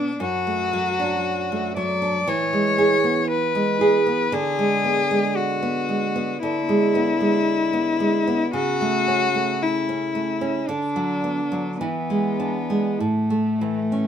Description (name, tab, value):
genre	romantic duo for cello and classical guitar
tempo	49-59 BPM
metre	4/4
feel	rubato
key	unclear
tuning	A4 = 435 Hz
part	rich cello	melody	0.0-14.1 s	A3 to D5	-22 LUFS	left 4 dB	none
part	nylon-string guitar	accompaniment	0.0-14.1 s	F#2 to G#4	-22 LUFS	right 3 dB	none
room	light reverb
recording	minimal, uncompressed stereo recording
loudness	-19 LUFS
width	side -8 dB against mid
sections	0.0-14.1 A section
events	none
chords	0.2 D/F#; 2.3 E; 4.3 E7/D; 8.5 A/C#; 10.7 Bm/D; 11.8 E7; 13.0 A